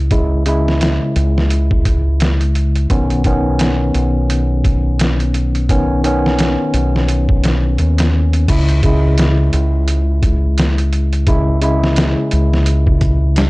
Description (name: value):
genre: trip hop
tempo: 86 BPM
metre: 4/4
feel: swing 58% on 16ths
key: C# minor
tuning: A4 = 440 Hz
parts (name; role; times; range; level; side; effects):
- overdriven tine electric piano; accompaniment; 0.0-13.5 s; C#3 to E4; -18 LUFS; equal; harmonic tremolo, tape echo
- deep dub fingered electric bass; bass; 0.0-13.5 s; B1 to D#2; -15 LUFS; equal; none
- trip hop sampler-style drum kit; drums; 0.1-13.5 s; crash cymbal, hi-hat, kick drum, snare drum; -17 LUFS; equal; none
room: little or no reverb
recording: dry, gritty hardware recording, transformer saturation, cassette tape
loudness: -12 LUFS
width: side -22 dB against mid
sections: 0.0-8.5 A section; 8.5-13.5 B section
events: none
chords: 0.0 C#m; 2.9 Badd9; 8.5 C#m